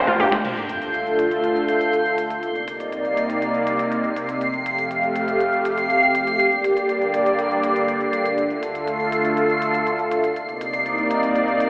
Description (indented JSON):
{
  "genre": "progressive house",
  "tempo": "121 BPM",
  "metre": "4/4",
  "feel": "straight",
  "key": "unclear",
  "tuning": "A4 = 440 Hz",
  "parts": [
    { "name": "supersaw pad", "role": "sustained chords", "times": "0.0-11.7 s", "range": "C2 to F5", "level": "-20 LUFS", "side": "equal", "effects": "phaser, sidechain pumping, low-pass filter" },
    { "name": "backwards swelling texture", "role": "texture", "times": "0.1-11.7 s", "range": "G6 to C7", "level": "-25 LUFS", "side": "equal", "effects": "built-in reverb, sidechain pumping" },
    { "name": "big-room dance drum kit", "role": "drums", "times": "0.1-11.7 s", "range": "crash cymbal, finger snaps, hi-hat", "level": "-30 LUFS", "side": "equal", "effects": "overdrive" },
    { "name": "sub drop", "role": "sound effects", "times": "0.4-2.4 s", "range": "none", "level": "-41 LUFS", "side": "equal", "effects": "none" }
  ],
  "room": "wet concert hall reverb, RT60 2.1 s",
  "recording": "played on a big sound system in a bare room, stone room reverb, telephone sound",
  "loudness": "-18 LUFS",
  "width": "side -28 dB against mid",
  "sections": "0.4-11.7 A section",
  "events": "band accent 0.0; impact 0.4-2.4; filter sweep on supersaw synth 0.4-11.7",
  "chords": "0.4 Dm; 2.4 Cm7; 4.4 Fadd9; 6.4 Gm; 8.4 Dm; 10.4 Cm7"
}